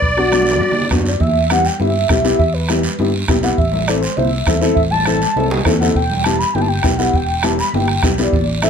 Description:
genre	latin, cumbia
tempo	202 BPM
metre	4/4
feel	straight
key	E minor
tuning	A4 = 438 Hz
part	musette accordion	melody	0.0-0.9 s	D5	-17 LUFS	equal	none
part	warm velvety synth lead	second line	0.0-8.7 s	F#4 to B5	-19 LUFS	equal	chorus
part	fingered electric bass	bass	0.0-8.7 s	E1 to G2	-20 LUFS	equal	none
part	bombo	percussion	0.0-8.7 s	none	-20 LUFS	right 1 dB	none
part	congas	percussion	0.0-8.7 s	none	-23 LUFS	right 2 dB	none
part	guiro	percussion	0.0-8.7 s	none	-26 LUFS	right 4 dB	none
part	dark upright piano	accompaniment	0.2-8.7 s	B3 to C5	-19 LUFS	left 4 dB	none
room	light reverb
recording	none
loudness	-13 LUFS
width	side -7 dB against mid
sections	0.0-1.2 A section; 1.2-8.7 B section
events	drum fill 0.3-1.2, 5.4-6.0; soft synth lead solo 1.2-8.7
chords	0.0 Bm; 1.2 Em; 3.6 Am; 6.0 Em

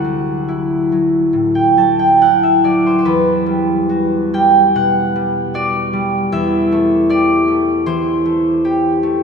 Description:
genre	classical, solo harp piece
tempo	66-79 BPM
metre	4/4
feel	rubato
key	E minor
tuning	A4 = 441 Hz
part	concert harp	solo	0.0-9.2 s	D2 to A5	-12 LUFS	equal	none
room	wet church reverb, RT60 3.4 s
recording	none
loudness	-12 LUFS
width	side -6 dB against mid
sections	0.0-9.2 A section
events	none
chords	0.0 Dadd9; 3.1 Em9; 6.3 Am9/E

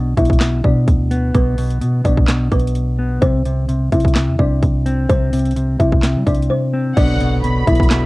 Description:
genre	hip hop, trap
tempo	128 BPM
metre	4/4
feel	half-time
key	B phrygian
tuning	A4 = 442 Hz
part	kalimba	melody	0.0-8.1 s	B3 to E5	-22 LUFS	left 1 dB	low-pass filter
part	mellow electric guitar	accompaniment	0.0-8.1 s	B2 to C4	-18 LUFS	equal	low-pass filter
part	warm 808-style bass	bass	0.0-8.1 s	B1 to G3	-21 LUFS	equal	none
part	trap drum kit	drums	0.2-8.0 s	crash cymbal, handclaps, hi-hat, kick drum, snare drum	-16 LUFS	equal	overdrive
part	warm symphonic violin section	second line	7.0-8.1 s	F#5 to B5	-24 LUFS	right 2 dB	tape echo
part	hand-pumped harmonium	sustained chords	7.0-8.1 s	D3 to F#4	-26 LUFS	equal	none
part	impact	sound effects	7.1-8.1 s	none	-27 LUFS	equal	none
room	little or no reverb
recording	cassette tape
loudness	-14 LUFS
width	side -20 dB against mid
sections	0.0-7.0 A section; 7.0-8.1 B section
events	break 6.5-7.0; impact 7.0-8.1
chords	0.0 Bm; 3.2 Cadd9; 7.0 Bm

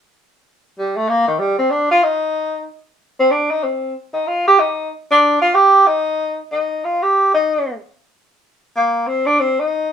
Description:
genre	jazz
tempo	188 BPM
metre	3/4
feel	swing 62% on 8ths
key	unclear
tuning	A4 = 441 Hz
part	mellow tenor saxophone	solo	0.8-9.9 s	Eb3 to G4	-14 LUFS	equal	none
room	moderate studio reverb, RT60 0.5 s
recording	band playing live in one room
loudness	-14 LUFS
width	side -8 dB against mid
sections	0.0-8.7 A section; 8.7-9.9 B section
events	tenor saxophone solo 8.7-9.9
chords	none

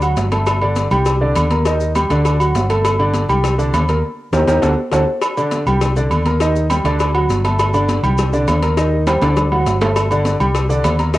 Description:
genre	latin, salsa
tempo	202 BPM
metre	4/4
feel	straight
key	G harmonic minor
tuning	A4 = 440 Hz
part	warm grand piano	accompaniment	0.0-11.2 s	D3 to Bb5	-19 LUFS	right 1 dB	cassette tape, plate reverb
part	hollow-body short-scale fingered electric bass	bass	0.0-11.2 s	G1 to Eb2	-18 LUFS	equal	none
part	agogo bells and timbales	percussion	0.0-11.2 s	none	-20 LUFS	right 1 dB	none
part	congas	percussion	0.0-11.2 s	none	-25 LUFS	equal	none
part	maracas	percussion	0.0-11.2 s	none	-37 LUFS	left 7 dB	none
part	cowbell	percussion	0.2-11.2 s	none	-25 LUFS	left 4 dB	none
room	moderate studio reverb, RT60 0.6 s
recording	home recording on cassette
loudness	-14 LUFS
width	side -16 dB against mid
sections	0.0-5.2 A section; 5.2-11.2 A section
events	drum fill 4.0-5.2, 9.1-10.0; band accent 4.0-5.2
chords	0.5 Gsus2; 1.1 Cmadd9; 1.7 Eb; 2.3 D; 2.8 Gsus2; 3.4 Cmadd9; 4.0 Eb; 4.6 D; 5.2 G5; 5.8 Cmadd9; 6.4 Eb; 7.0 D; 7.6 Gsus2; 8.2 Cmadd9; 8.8 Eb; 9.4 D; 10.0 Gsus2; 10.5 Cmadd9

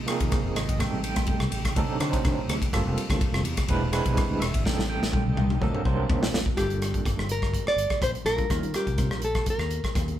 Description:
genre	electric jazz fusion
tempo	125 BPM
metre	4/4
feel	straight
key	unclear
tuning	A4 = 439 Hz
part	soft additive organ-like pad	sustained chords	0.0-6.6 s	C3 to A4	-36 LUFS	right 2 dB	ensemble chorus, built-in reverb, tremolo
part	overdriven tine electric piano	accompaniment	0.1-9.2 s	F3 to G5	-30 LUFS	right 3 dB	fast tremolo
part	modern studio drum kit	drums	0.1-10.2 s	hi-hat, kick drum, ride cymbal, rim click, snare drum, toms	-27 LUFS	left 1 dB	none
part	fingered electric bass	bass	0.2-10.2 s	E1 to Eb3	-29 LUFS	equal	none
part	nylon-string guitar	melody	6.6-10.2 s	G4 to D5	-28 LUFS	equal	none
room	light reverb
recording	band playing live in one room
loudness	-23 LUFS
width	side -12 dB against mid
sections	0.0-6.6 A section; 6.6-10.2 B section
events	drum fill 4.7-6.6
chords	0.0 Ab69; 0.8 Am7b5; 1.8 D7b9; 2.7 Gm11; 3.7 E7b13; 4.7 Am7b5; 5.6 D7b13; 6.6 Gm9; 8.5 Eb9

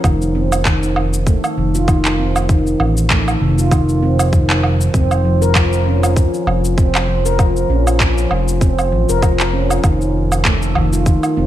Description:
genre	organic downtempo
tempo	98 BPM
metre	4/4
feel	swing 56% on 16ths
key	unclear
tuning	A4 = 440 Hz
part	handpan	arpeggios	0.0-11.5 s	Eb3 to Bb4	-18 LUFS	right 1 dB	digital delay
part	smooth synth bass	bass	0.0-11.5 s	F1 to Bb1	-17 LUFS	equal	none
part	electronic kick drum	drums	0.0-11.2 s	none	-15 LUFS	equal	none
part	electronic woodblock, cabasa and handclaps	drums	0.0-11.3 s	none	-20 LUFS	right 1 dB	none
part	udu	percussion	10.8-10.9 s	none	-24 LUFS	left 1 dB	none
room	moderate recital hall reverb, RT60 1.7 s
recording	dark, warm production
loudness	-13 LUFS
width	side -12 dB against mid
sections	0.0-11.5 A section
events	none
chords	0.0 F7; 4.9 Bbmadd9/F; 9.8 F7

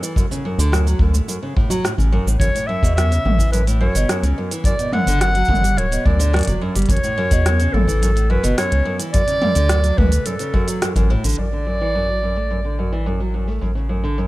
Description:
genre	folktronica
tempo	107 BPM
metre	4/4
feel	straight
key	unclear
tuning	A4 = 439 Hz
part	nylon-string guitar	arpeggios	0.0-14.3 s	F#2 to A3	-23 LUFS	right 1 dB	low-pass filter, tape echo
part	minimal click drum kit	drums	0.0-14.3 s	hi-hat, rim click, shaker, toms	-24 LUFS	right 1 dB	low-pass filter on perc, low-pass filter on snare, low-pass filter on hats, low-pass filter on toms, low-pass filter on room
part	kick drum	drums	0.2-11.1 s	none	-20 LUFS	equal	none
part	round analog bass	bass	0.6-14.3 s	D1 to E2	-18 LUFS	equal	none
part	clear clarinet	melody	2.4-13.3 s	A4 to F#5	-23 LUFS	equal	none
room	small room reverb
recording	none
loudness	-16 LUFS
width	side -18 dB against mid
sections	0.0-11.4 A section; 11.4-14.3 B section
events	none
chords	0.2 Dmaj7; 2.4 A6; 4.7 Gmaj7(no3); 6.9 A6; 9.1 D; 11.4 D/A; 13.6 Bmadd9/A (rootless)

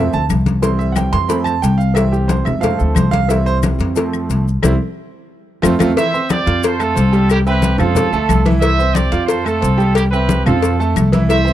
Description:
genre	latin, salsa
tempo	180 BPM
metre	4/4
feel	straight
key	C major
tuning	A4 = 440 Hz
part	bright baby grand piano	accompaniment	0.0-11.5 s	E3 to F6	-19 LUFS	right 4 dB	none
part	upright bass	bass	0.0-11.5 s	C2 to F2	-16 LUFS	equal	none
part	congas	percussion	0.1-11.5 s	none	-20 LUFS	left 2 dB	none
part	maracas	percussion	0.1-11.5 s	none	-33 LUFS	left 16 dB	none
part	claves	percussion	0.3-11.1 s	none	-28 LUFS	left 17 dB	none
part	cowbell	percussion	0.3-11.5 s	none	-23 LUFS	left 6 dB	none
part	bright trumpet section	melody	6.0-11.5 s	E4 to E5	-20 LUFS	right 2 dB	none
room	small room ambience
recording	dry, close 1970s-style studio recording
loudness	-13 LUFS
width	side -12 dB against mid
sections	0.0-6.0 A section; 6.0-11.5 B section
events	grand piano solo 0.0-6.0; band accent 4.6-6.0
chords	0.0 F; 0.6 C; 1.3 F; 2.0 C; 2.6 F; 3.3 C; 4.0 F; 4.6 C; 5.3 F; 6.0 C; 6.6 F; 7.3 C; 8.0 F; 8.6 C; 9.3 F; 10.0 C; 10.6 F

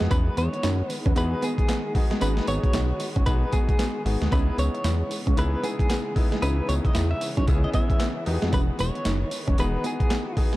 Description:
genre	R&B, new jack swing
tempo	114 BPM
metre	4/4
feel	swing 61% on 16ths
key	unclear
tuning	A4 = 441 Hz
part	clear grand piano	accompaniment	0.0-10.6 s	B3 to G#4	-32 LUFS	left 3 dB	none
part	warm studio string section	sustained chords	0.0-10.6 s	C#3 to F#4	-34 LUFS	equal	none
part	direct-recorded clean electric guitar	riff	0.0-10.6 s	G#3 to E4	-32 LUFS	right 4 dB	wide subtle chorus
part	fat analog bass	bass	0.0-9.8 s	E1 to F#2	-25 LUFS	equal	none
part	boom bap sampler-style drum kit	drums	0.0-10.6 s	handclaps, hi-hat, kick drum, snare drum, tambourine	-25 LUFS	equal	overdrive
part	direct-recorded clean electric guitar	melody	0.1-10.3 s	G#4 to E5	-31 LUFS	equal	tremolo
room	little or no reverb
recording	dark, warm production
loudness	-22 LUFS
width	side -17 dB against mid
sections	0.0-10.6 A section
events	none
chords	0.0 Emaj7; 2.2 G#m7; 4.3 C#m7; 8.3 Emaj7

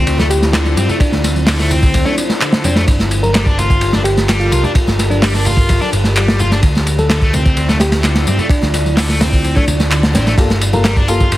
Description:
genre	breakbeat, breaks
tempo	128 BPM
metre	4/4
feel	straight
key	G dorian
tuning	A4 = 440 Hz
part	deep dark ambient pad	sustained chords	0.0-11.4 s	C4 to D5	-23 LUFS	left 1 dB	chorus, built-in reverb, sidechain pumping
part	overdriven semi-hollow guitar	riff	0.0-11.4 s	D3 to F4	-21 LUFS	left 1 dB	tube saturation, ping-pong delay
part	picked electric bass	bass	0.0-11.4 s	G1 to G2	-16 LUFS	equal	tube saturation
part	crunchy breakbeat drum kit	drums	0.1-11.4 s	hi-hat, kick drum, ride cymbal, snare drum	-15 LUFS	equal	none
part	electronic tambourine and handclaps	drums	0.1-11.4 s	none	-24 LUFS	equal	none
part	congas	percussion	0.2-11.3 s	none	-24 LUFS	left 1 dB	none
part	bell-like FM electric piano	melody	0.3-10.9 s	D4 to Bb4	-22 LUFS	equal	chorus, small speaker sound, ping-pong delay
part	dark baby grand piano	stabs	10.4-11.2 s	Bb3 to A4	-19 LUFS	left 2 dB	vintage 12-bit sampler grit, ping-pong delay
room	light reverb, studio reverb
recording	heavily compressed radio sound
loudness	-11 LUFS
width	side -15 dB against mid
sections	0.0-10.4 A section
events	none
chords	0.0 Dm9; 2.9 Gm9; 6.6 Dm9; 10.4 Gm9

